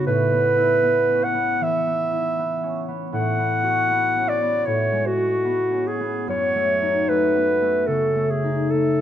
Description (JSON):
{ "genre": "classical, impressionist duo for clarinet and harp", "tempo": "68-80 BPM", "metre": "4/4", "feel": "rubato", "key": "F# minor", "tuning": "A4 = 440 Hz", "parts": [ { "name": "warm clarinet", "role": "melody", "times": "0.0-9.0 s", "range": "F#4 to F#5", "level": "-20 LUFS", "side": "equal", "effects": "none" }, { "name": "concert harp", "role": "accompaniment", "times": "0.0-9.0 s", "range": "F#2 to F#4", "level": "-24 LUFS", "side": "equal", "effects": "none" } ], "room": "moderate stone room reverb, RT60 1.2 s", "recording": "minimal, uncompressed stereo recording", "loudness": "-19 LUFS", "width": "side -10 dB against mid", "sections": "0.0-9.0 A section", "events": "none", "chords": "0.1 Aadd9; 3.1 B5/A; 6.3 F#m6" }